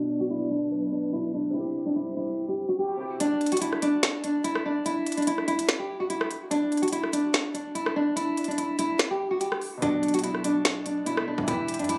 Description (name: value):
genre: hip hop, trap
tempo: 145 BPM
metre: 4/4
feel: half-time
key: B phrygian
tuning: A4 = 439 Hz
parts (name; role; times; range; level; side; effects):
- nylon-string guitar; melody; 0.0-12.0 s; D4 to G4; -28 LUFS; equal; low-pass filter, tape echo
- felt-muted upright piano; accompaniment; 0.0-3.2, 9.8-12.0 s; B2 to B4; -38 LUFS; equal; low-pass filter
- dark analog pad; sustained chords; 0.1-3.2 s; F#3 to C5; -40 LUFS; equal; chorus, phaser
- soft octave-layered synth lead; second line; 0.1-1.1 s; B4 to D5; -41 LUFS; equal; chorus, tape echo
- trap drum kit; drums; 3.2-12.0 s; hi-hat, kick drum, rim click, snare drum; -31 LUFS; equal; none
- long sustained 808-style bass; bass; 9.8-12.0 s; E1 to G2; -42 LUFS; equal; none
room: light reverb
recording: recorded on a phone in the room, club reverb, compression, low-pass filter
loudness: -27 LUFS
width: mono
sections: 0.0-3.2 A section; 3.2-12.0 B section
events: filter sweep 0.0-3.2; kick muted 3.2-9.8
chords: 0.0 Bm; 1.5 C; 3.2 N.C.; 9.8 Bm; 11.5 Em